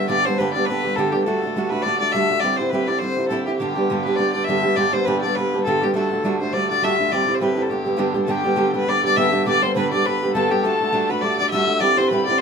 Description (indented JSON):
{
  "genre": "celtic folk, Celtic reel",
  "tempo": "205 BPM",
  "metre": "4/4",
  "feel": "swing 56% on 8ths",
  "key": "G major",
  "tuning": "A4 = 440 Hz",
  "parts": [
    { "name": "warm fiddle", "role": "melody", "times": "0.0-12.4 s", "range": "G4 to E5", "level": "-21 LUFS", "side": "left 3 dB", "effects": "none" },
    { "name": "fingerpicked steel-string acoustic guitar", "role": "accompaniment", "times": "0.0-12.4 s", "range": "G2 to G4", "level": "-21 LUFS", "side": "right 3 dB", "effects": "none" },
    { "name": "accordion", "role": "drone", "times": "0.0-12.4 s", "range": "G2 to D3", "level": "-30 LUFS", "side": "equal", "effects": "none" },
    { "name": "mellow tin whistle", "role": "second line", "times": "8.3-12.4 s", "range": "G5 to E6", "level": "-26 LUFS", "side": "left 4 dB", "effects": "none" }
  ],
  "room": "moderate studio reverb, RT60 0.6 s",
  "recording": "minimal, uncompressed stereo recording",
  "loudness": "-18 LUFS",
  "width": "side -6 dB against mid",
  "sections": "0.0-8.3 A section; 8.3-12.4 A section",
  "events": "none",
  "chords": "0.0 G; 1.3 D/G; 2.4 C/G; 3.6 G; 5.9 D/G; 7.1 C/G; 7.7 G; 10.6 D/G; 11.8 C/G"
}